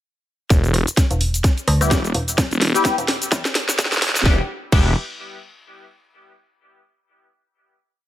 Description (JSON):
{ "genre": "bass house", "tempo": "128 BPM", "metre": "4/4", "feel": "swing 57% on 16ths", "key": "E minor", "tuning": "A4 = 436 Hz", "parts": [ { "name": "phased detuned saw bass", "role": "bass", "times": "0.5-4.9 s", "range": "E1", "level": "-19 LUFS", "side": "equal", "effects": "phaser, tube saturation, sidechain pumping" }, { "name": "electronic kick drum", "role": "drums", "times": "0.5-4.8 s", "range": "none", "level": "-16 LUFS", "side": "equal", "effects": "overdrive" }, { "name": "garage drum kit", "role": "drums", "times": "0.5-4.8 s", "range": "cabasa, crash cymbal, hi-hat, rim click, snare drum", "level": "-22 LUFS", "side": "equal", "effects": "overdrive" }, { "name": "metallic FM bass", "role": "bass", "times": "1.1-3.4 s", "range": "E1 to E2", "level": "-20 LUFS", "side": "equal", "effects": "overdrive, sidechain pumping" }, { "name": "band-passed chord stab", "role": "stabs", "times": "1.8-4.9 s", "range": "G3 to G4", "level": "-23 LUFS", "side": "left 3 dB", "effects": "phaser, analog chorus, sidechain pumping, dub echo" } ], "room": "light reverb", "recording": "high-pass filter", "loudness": "-16 LUFS", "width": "side -13 dB against mid", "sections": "0.5-4.3 build; 4.3-6.1 final chord", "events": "build-up 0.5-4.3; drum fill 0.5-4.3; filter sweep 0.5-4.3", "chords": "0.5 Em", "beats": "| 0.51 0.97 1.44 1.91 | 2.38 2.85 3.32 3.79 | 4.25 4.72" }